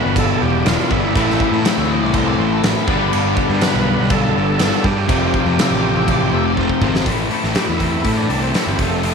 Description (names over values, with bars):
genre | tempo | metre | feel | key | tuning
classic rock | 122 BPM | 4/4 | straight | A minor | A4 = 440 Hz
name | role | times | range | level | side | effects
overdriven tonewheel organ | melody | 0.0-9.1 s | A3 to B4 | -24 LUFS | right 3 dB | slow rotary speaker
crunchy overdriven guitar | riff | 0.0-9.1 s | E2 to G4 | -24 LUFS | right 12 dB | none
crunchy overdriven guitar | riff | 0.0-7.1 s | E2 to A3 | -22 LUFS | equal | none
distorted electric guitar | riff | 0.0-9.1 s | E2 to G4 | -21 LUFS | left 12 dB | distortion
fuzz picked electric bass | bass | 0.0-9.1 s | E1 to A2 | -21 LUFS | right 1 dB | overdrive
big rock drum kit | drums | 0.2-9.1 s | crash cymbal, hi-hat, kick drum, snare drum | -20 LUFS | right 1 dB | none
octave-fuzz lead guitar | second line | 1.7-7.1 s | A4 to G5 | -27 LUFS | left 9 dB | distortion
room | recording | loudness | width
light reverb, small room ambience | 1960s-style stereo with parts hard left and right | -14 LUFS | side -5 dB against mid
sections
0.0-7.1 A section; 7.1-9.1 B section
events
drum fill 6.6-7.1; tonewheel organ solo 7.1-9.1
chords
0.0 Em; 1.1 Am; 2.9 G; 5.1 Fadd9; 7.1 Am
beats
0.16 0.65 | 1.15 1.64 2.13 2.63 | 3.12 3.61 4.11 4.60 | 5.09 5.59 6.08 6.57 | 7.07 7.56 8.05 8.55 | 9.04